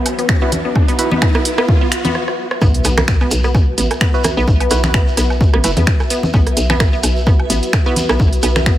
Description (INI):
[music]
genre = minimal techno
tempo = 129 BPM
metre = 4/4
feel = swing 56% on 16ths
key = unclear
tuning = A4 = 440 Hz
[part]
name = resonant blip pluck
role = riff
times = 0.0-8.8 s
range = B3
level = -22 LUFS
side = left 1 dB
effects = chorus, vintage 12-bit sampler grit, sidechain pumping, digital delay
[part]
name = riser and impact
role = sound effects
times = 0.0-4.5 s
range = none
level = -24 LUFS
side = equal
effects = none
[part]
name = bubbling stepped-filter texture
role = texture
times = 0.0-2.2 s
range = E3 to F#3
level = -38 LUFS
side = left 3 dB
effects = none
[part]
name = granular cloud pad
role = texture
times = 0.0-8.8 s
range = F#4 to E5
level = -24 LUFS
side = equal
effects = built-in reverb, sidechain pumping
[part]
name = minimal click drum kit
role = drums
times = 0.1-8.8 s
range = finger snaps, hi-hat, rim click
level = -20 LUFS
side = right 1 dB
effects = high-pass filter on hats, high-pass filter on snare, high-pass filter on room
[part]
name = electronic woodblock, congas and rim click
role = percussion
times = 0.1-8.6 s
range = none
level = -21 LUFS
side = right 2 dB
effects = overdrive, digital delay
[part]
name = electronic kick drum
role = drums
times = 0.3-8.8 s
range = none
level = -14 LUFS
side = equal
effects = none
[part]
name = percussive organ stab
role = stabs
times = 0.4-1.1, 4.1-8.0 s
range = E4 to B4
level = -23 LUFS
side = right 2 dB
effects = chorus, phaser, digital delay
[part]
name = hollow knocking FM bass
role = bass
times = 2.6-8.8 s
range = F#1 to E2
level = -18 LUFS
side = equal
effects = sidechain pumping
[part]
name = shekere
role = percussion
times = 2.6-8.8 s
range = none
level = -27 LUFS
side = equal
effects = none
[sound]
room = light reverb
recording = none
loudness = -12 LUFS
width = side -13 dB against mid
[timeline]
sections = 0.0-2.6 A section; 2.6-8.8 B section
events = build-up 0.0-2.6; riser 0.0-2.2; filter sweep on synth pluck 0.0-2.6; filter sweep on synth stab 0.0-2.6; drum fill 2.2-2.6; stop 2.2-2.6; drop 2.6-8.8; impact 2.6-4.5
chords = 0.0 Bsus4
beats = 0.29 | 0.76 1.22 1.69 2.15 | 2.62 3.08 3.55 4.01 | 4.48 4.94 5.41 5.87 | 6.34 6.80 7.27 7.73 | 8.20 8.66